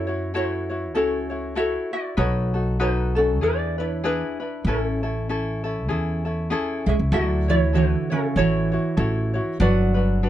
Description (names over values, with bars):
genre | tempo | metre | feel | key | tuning
Hawaiian | 97 BPM | 4/4 | swing 58% on 8ths | A major, D major from 7.1 s | A4 = 440 Hz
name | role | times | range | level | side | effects
ukulele | melody | 0.0-10.3 s | C#4 to E5 | -26 LUFS | equal | plate reverb
ukulele | accompaniment | 0.0-10.3 s | C#4 to C#5 | -27 LUFS | left 2 dB | none
upright bass | bass | 0.0-10.3 s | G1 to F#2 | -24 LUFS | equal | none
picked steel-string acoustic guitar | second line | 6.9-10.3 s | C#3 to G#3 | -23 LUFS | right 3 dB | none
room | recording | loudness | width
light reverb | nothing above 11.0 kHz | -20 LUFS | side -12 dB against mid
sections
0.0-7.1 A section; 7.1-10.3 B section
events
none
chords
0.0 F#m7; 2.2 B7; 3.4 E7; 4.7 Amaj7; 7.1 Dmaj9; 9.6 Gmaj7